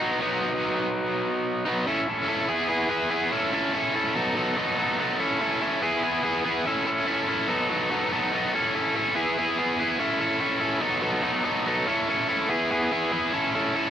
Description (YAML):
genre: rock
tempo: 144 BPM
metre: 4/4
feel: straight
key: unclear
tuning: A4 = 440 Hz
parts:
  - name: overdriven electric guitar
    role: solo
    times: 0.0-13.9 s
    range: F#3 to A4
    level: -23 LUFS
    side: equal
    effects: none
room: moderate studio reverb, RT60 0.6 s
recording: worn, warbling old tape, cassette tape, warbly pitch drift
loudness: -23 LUFS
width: side -10 dB against mid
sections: 0.0-1.9 A section; 1.9-13.9 B section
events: none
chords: 0.0 B; 1.9 A; 2.5 E; 3.3 A; 4.2 B5; 5.2 A; 5.8 E; 6.7 A; 7.5 B5; 8.5 A; 9.2 E; 10.0 A; 10.8 B5; 11.9 A; 12.5 E; 13.3 A